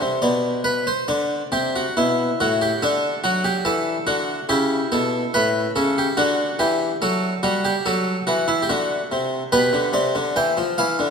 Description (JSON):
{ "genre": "classical, baroque-style suite movement for harpsichord", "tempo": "71 BPM", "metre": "4/4", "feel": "rubato", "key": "unclear", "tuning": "A4 = 440 Hz", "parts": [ { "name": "harpsichord", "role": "solo", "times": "0.0-11.1 s", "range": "A2 to G5", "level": "-18 LUFS", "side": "equal", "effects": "none" } ], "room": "wet concert hall reverb, RT60 2.4 s", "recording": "minimal, uncompressed stereo recording", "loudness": "-18 LUFS", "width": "side -6 dB against mid", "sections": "0.0-11.1 A section", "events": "none", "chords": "0.0 G; 2.8 D; 4.5 A; 6.2 D; 9.5 G/B" }